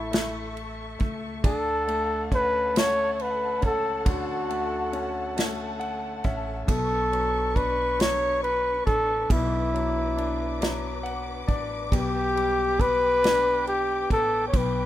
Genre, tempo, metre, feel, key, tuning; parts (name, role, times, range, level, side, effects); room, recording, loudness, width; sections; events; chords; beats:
six-eight pop ballad; 46 BPM (dotted quarters); 6/8; straight; B minor; A4 = 440 Hz
warm flugelhorn; melody; 0.0-14.9 s; E4 to C#5; -24 LUFS; equal
bright grand piano; accompaniment; 0.0-14.9 s; B2 to F#5; -33 LUFS; left 5 dB
dark studio string section; sustained chords; 0.0-14.9 s; D4 to D6; -36 LUFS; left 2 dB
upright bass; bass; 0.0-14.9 s; A1 to D2; -34 LUFS; equal
unplugged drum kit; drums; 0.1-14.7 s; kick drum, ride cymbal, snare drum; -26 LUFS; right 1 dB
light reverb; rough home demo mix; -23 LUFS; side -13 dB against mid
0.0-14.9 A section
grand piano fill 5.4-6.7, 10.6-11.9
0.0 A; 1.4 Dmaj7; 6.7 Bmadd9; 11.9 G
0.13 | 1.44 2.75 | 4.06 5.37 | 6.68 7.99 | 9.30 10.61 | 11.92 13.23 | 14.54